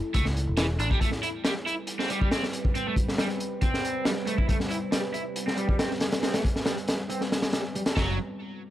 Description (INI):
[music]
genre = breakbeat, breaks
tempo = 138 BPM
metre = 4/4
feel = straight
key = unclear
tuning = A4 = 440 Hz
[part]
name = deep dark ambient pad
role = sustained chords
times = 0.0-8.2 s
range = G3 to B4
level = -34 LUFS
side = equal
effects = chorus, built-in reverb, vintage 12-bit sampler grit, sidechain pumping
[part]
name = crunchy overdriven guitar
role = riff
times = 0.1-8.2 s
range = E3 to A4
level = -31 LUFS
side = right 1 dB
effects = low-pass filter, tape echo
[part]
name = picked electric bass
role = bass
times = 0.1-0.9, 8.0-8.2 s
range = E1 to C#2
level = -28 LUFS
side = equal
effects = none
[part]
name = crunchy breakbeat drum kit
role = drums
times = 0.1-8.1 s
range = hi-hat, kick drum, ride cymbal, snare drum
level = -27 LUFS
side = equal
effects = none
[sound]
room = small room ambience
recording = dry, gritty hardware recording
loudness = -25 LUFS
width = side -13 dB against mid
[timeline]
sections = 0.0-8.0 A section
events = filter sweep on overdriven electric guitar 0.0-8.0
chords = 0.0 F#m7 (rootless); 0.8 Am9 (rootless); 8.0 F#m9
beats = 0.14 0.58 | 1.01 1.45 1.88 2.32 | 2.75 3.19 3.62 4.06 | 4.49 4.93 5.36 5.80 | 6.23 6.67 7.10 7.54 | 7.97